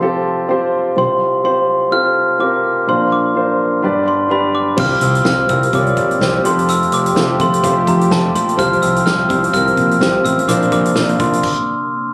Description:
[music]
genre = piano-driven pop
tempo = 126 BPM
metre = 4/4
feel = swing 56% on 16ths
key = unclear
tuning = A4 = 439 Hz
[part]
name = glockenspiel with soft plastic mallets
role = melody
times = 0.0-12.1 s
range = A5 to F6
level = -19 LUFS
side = equal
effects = none
[part]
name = warm concert grand piano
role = accompaniment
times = 0.0-11.5 s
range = F1 to D5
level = -19 LUFS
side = equal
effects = none
[part]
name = lush unison pad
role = sustained chords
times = 5.3-11.4 s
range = C3 to G4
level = -23 LUFS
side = equal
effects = chorus
[part]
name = fat analog bass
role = bass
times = 4.8-11.4 s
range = F1 to C2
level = -22 LUFS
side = equal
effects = none
[part]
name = natural country drum kit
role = drums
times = 4.8-11.6 s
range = crash cymbal, hi-hat, kick drum, snare drum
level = -25 LUFS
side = equal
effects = none
[sound]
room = light reverb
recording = recorded on a phone in the room, club reverb, compression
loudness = -15 LUFS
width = mono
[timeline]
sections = 0.0-4.8 A section; 4.8-12.1 B section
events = stop 11.4-12.1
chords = 0.0 Fadd9; 1.0 Csus4; 2.9 Bbadd9; 3.8 G; 4.8 Csus4; 6.4 Fadd9; 8.6 Csus4; 10.5 Bbadd9

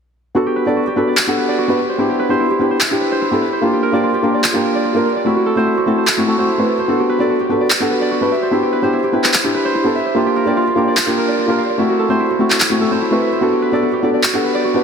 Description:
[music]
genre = future bass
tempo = 147 BPM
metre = 4/4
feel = half-time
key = G major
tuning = A4 = 440 Hz
[part]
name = felt-muted upright piano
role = accompaniment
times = 0.3-14.8 s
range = A3 to F#5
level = -16 LUFS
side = left 1 dB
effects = ping-pong delay
[part]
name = Celtic harp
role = arpeggios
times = 0.4-14.8 s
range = E4 to F5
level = -18 LUFS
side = right 3 dB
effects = low-pass filter, ping-pong delay
[part]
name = electronic handclaps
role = drums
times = 1.2-14.3 s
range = none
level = -20 LUFS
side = equal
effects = none
[sound]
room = moderate huge ambient reverb, RT60 4.7 s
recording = dense, heavily limited modern master, faint mains hum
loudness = -13 LUFS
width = side -6 dB against mid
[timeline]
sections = 0.4-14.8 A section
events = none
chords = 0.4 Gmaj7; 1.8 Cmaj9; 3.6 Bb6; 5.3 Am6; 6.9 Gmaj7; 8.3 Cmaj9; 10.2 Bb6; 11.8 Am6; 13.4 Gmaj7

